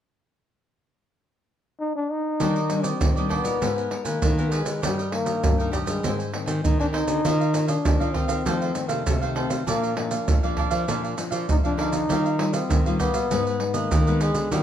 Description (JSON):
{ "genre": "samba and choro", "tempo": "99 BPM", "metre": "4/4", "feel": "straight", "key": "Eb major", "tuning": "A4 = 435 Hz", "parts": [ { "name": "breathy trombone", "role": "melody", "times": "1.8-14.6 s", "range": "G3 to Eb4", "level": "-26 LUFS", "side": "left 2 dB", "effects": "none" }, { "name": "cavaquinho", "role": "accompaniment", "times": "2.4-14.6 s", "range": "D4 to Ab5", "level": "-31 LUFS", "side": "right 6 dB", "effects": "none" }, { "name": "nylon-string guitar", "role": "accompaniment", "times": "2.4-14.6 s", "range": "F2 to Bb4", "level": "-30 LUFS", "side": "left 4 dB", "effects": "none" }, { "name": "nylon-string guitar", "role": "bass", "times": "2.4-14.6 s", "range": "G2 to F3", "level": "-28 LUFS", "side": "equal", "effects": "none" }, { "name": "maracas, surdo and pandeiro", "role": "percussion", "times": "2.4-14.6 s", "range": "none", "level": "-25 LUFS", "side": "right 1 dB", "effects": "none" } ], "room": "moderate large studio reverb, RT60 1.0 s", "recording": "minimal, uncompressed stereo recording", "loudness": "-21 LUFS", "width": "side -10 dB against mid", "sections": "0.0-2.4 A section; 2.4-14.6 B section", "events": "none", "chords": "0.0 N.C.; 2.4 Ebmaj7; 3.6 Abmadd9; 4.8 Eb/G; 6.0 Abadd9; 7.2 Ebsus2; 8.5 F7; 9.7 Bb; 12.1 Ebadd9; 13.3 Abm" }